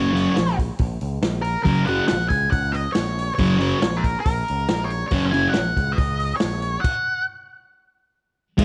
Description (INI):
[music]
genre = garage rock duo or trio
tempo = 139 BPM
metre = 4/4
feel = straight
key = F# major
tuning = A4 = 440 Hz
[part]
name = octave-fuzz lead guitar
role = melody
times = 0.0-7.2 s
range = A#4 to G#5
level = -27 LUFS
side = equal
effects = distortion
[part]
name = thick fuzz guitar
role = riff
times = 0.0-5.5, 8.6 s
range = F#2 to G#3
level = -22 LUFS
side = equal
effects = distortion
[part]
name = overdriven picked electric bass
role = bass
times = 0.0-8.6 s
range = F#1 to C#2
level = -29 LUFS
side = equal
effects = none
[part]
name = vintage drum kit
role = drums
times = 0.2-8.6 s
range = crash cymbal, hi-hat, kick drum, snare drum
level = -27 LUFS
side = equal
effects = vintage 12-bit sampler grit
[sound]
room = light reverb, small room ambience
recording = none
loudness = -22 LUFS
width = mono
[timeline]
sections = 0.0-8.6 A section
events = stop 6.8-8.6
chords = 0.0 F#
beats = 0.36 0.79 1.23 | 1.66 2.09 2.53 2.96 | 3.39 3.83 4.26 4.69 | 5.12 5.55 5.99 6.42 | 6.85 7.28 7.71 8.14 | 8.57